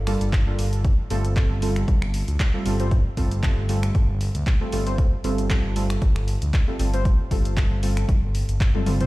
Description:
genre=deep house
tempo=116 BPM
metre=4/4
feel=swing 55% on 16ths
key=unclear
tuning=A4 = 439 Hz
part: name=deep mellow chord stab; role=stabs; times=0.0-9.1 s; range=G3 to C5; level=-28 LUFS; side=right 1 dB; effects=chorus, sidechain pumping, digital delay
part: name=smooth gliding synth bass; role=bass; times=0.0-9.1 s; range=G1 to D2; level=-24 LUFS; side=equal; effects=sidechain pumping
part: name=punchy analog drum machine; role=drums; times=0.1-9.1 s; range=finger snaps, handclaps, hi-hat, toms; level=-33 LUFS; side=equal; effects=none
part: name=electronic kick drum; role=drums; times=0.3-8.7 s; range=none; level=-20 LUFS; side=equal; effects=none
room=digital ambience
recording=played on a big sound system in a bare room, stone room reverb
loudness=-20 LUFS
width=side -19 dB against mid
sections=0.0-9.1 A section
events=drum fill 8.7-9.1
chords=0.0 Gm9; 0.8 Fadd9/G

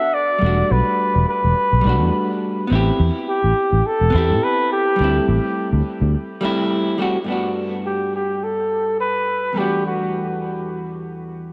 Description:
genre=sunset chillout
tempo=105 BPM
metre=4/4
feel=swing 55% on 16ths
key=G major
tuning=A4 = 440 Hz
part: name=breathy flugelhorn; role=melody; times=0.0-10.4 s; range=F#4 to E5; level=-23 LUFS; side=equal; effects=tape echo
part: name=vintage hollow-body jazz guitar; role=accompaniment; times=0.0-11.5 s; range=E2 to A4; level=-25 LUFS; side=equal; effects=tape echo
part: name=sustaining fretless electric bass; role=bass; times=0.4-6.1 s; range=E1 to A2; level=-20 LUFS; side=equal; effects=lush chorus
room=moderate plate reverb, RT60 3.7 s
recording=echo-heavy mix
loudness=-19 LUFS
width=mono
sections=0.0-7.3 A section; 7.3-11.5 B section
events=none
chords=0.4 Em11; 2.7 Am9; 5.0 D9sus4; 7.3 Gmaj9; 9.6 Em11

